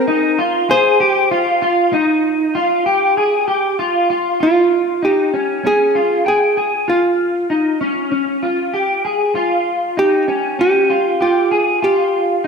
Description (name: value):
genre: dream pop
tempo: 97 BPM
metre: 4/4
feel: straight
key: unclear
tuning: A4 = 440 Hz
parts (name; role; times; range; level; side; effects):
- hollow-body jazz guitar; melody; 0.0-12.5 s; F4 to C5; -16 LUFS; right 1 dB; ping-pong delay
- electric guitar at the edge of break-up; arpeggios; 0.0-12.5 s; Db4 to G5; -16 LUFS; left 1 dB; ensemble chorus, ping-pong delay
room: wet concert hall reverb, RT60 2.0 s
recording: none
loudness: -13 LUFS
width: side -5 dB against mid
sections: 0.0-1.9 A section; 1.9-4.4 B section; 4.4-12.5 C section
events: none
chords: 0.0 F5; 0.7 Abmaj7; 1.9 Ab5; 4.4 Dbadd9; 11.8 Fsus2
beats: 0.07 0.69 1.31 | 1.93 2.55 3.17 3.79 | 4.41 5.02 5.64 6.26 | 6.88 7.50 8.12 8.73 | 9.35 9.97 10.59 11.21 | 11.83 12.45